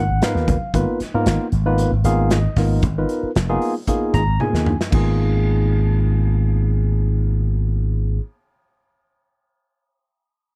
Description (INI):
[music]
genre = electric jazz fusion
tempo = 114 BPM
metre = 4/4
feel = straight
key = G# dorian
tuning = A4 = 440 Hz
[part]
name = barky tine electric piano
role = accompaniment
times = 0.0-8.2 s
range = A#3 to A#5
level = -25 LUFS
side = equal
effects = subtle chorus
[part]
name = slap bass with an envelope filter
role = bass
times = 0.0-8.2 s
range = E#1 to G#2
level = -20 LUFS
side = equal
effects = none
[part]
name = modern studio drum kit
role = drums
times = 0.2-5.0 s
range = crash cymbal, hi-hat, kick drum, snare drum, toms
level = -27 LUFS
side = equal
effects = none
[part]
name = congas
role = percussion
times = 0.5-0.6 s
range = none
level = -27 LUFS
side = equal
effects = none
[sound]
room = little or no reverb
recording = none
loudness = -19 LUFS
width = mono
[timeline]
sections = 0.0-4.9 A section; 4.9-9.1 B section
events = drum fill 4.4-4.9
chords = 0.0 G#m69